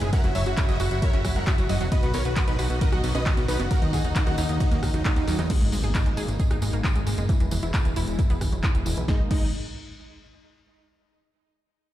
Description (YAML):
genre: uplifting trance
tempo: 134 BPM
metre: 4/4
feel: straight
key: G# minor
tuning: A4 = 440 Hz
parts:
  - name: big supersaw lead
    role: melody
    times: 0.0-5.5, 9.1-9.5 s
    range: F#3 to F#5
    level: -32 LUFS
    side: equal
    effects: sidechain pumping, ping-pong delay
  - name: clear baby grand piano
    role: second line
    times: 0.0-5.5 s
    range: D#4 to F#5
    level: -40 LUFS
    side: equal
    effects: none
  - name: rich chamber violin section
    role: second line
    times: 0.0-5.4 s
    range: B3 to F#5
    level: -35 LUFS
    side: equal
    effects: digital delay
  - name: filtered supersaw swell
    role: sustained chords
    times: 0.0-9.3 s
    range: B2 to F#4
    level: -34 LUFS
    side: left 1 dB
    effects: sidechain pumping
  - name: wide unison pluck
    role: arpeggios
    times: 0.0-9.5 s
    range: D#3 to B4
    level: -34 LUFS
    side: right 2 dB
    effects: sidechain pumping, ping-pong delay
  - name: plucky analog bass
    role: bass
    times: 0.0-9.5 s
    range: E1 to E2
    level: -27 LUFS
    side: equal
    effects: sidechain pumping
  - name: punchy analog drum machine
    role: drums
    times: 0.0-9.4 s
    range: crash cymbal, handclaps, hi-hat, ride cymbal, rim click, snare drum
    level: -34 LUFS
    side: left 1 dB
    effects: none
  - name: tambourine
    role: percussion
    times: 0.0-9.1 s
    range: none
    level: -42 LUFS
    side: right 6 dB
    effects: none
  - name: electronic kick drum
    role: drums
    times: 0.1-9.4 s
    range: none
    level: -23 LUFS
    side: equal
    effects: none
  - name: impact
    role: sound effects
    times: 5.5-7.3 s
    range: none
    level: -32 LUFS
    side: equal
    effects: none
room: little or no reverb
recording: played on a big sound system in a bare room, large studio reverb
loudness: -21 LUFS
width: side -13 dB against mid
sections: 0.0-5.5 A section; 5.5-9.1 B section; 9.1-10.9 C section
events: drop 0.0-5.5; impact 5.5-7.3; filter sweep on synth arpeggio sound 5.5-9.1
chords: 0.1 F#; 1.9 B; 3.7 D#m7; 5.5 G#madd9; 7.3 E; 9.1 G#madd9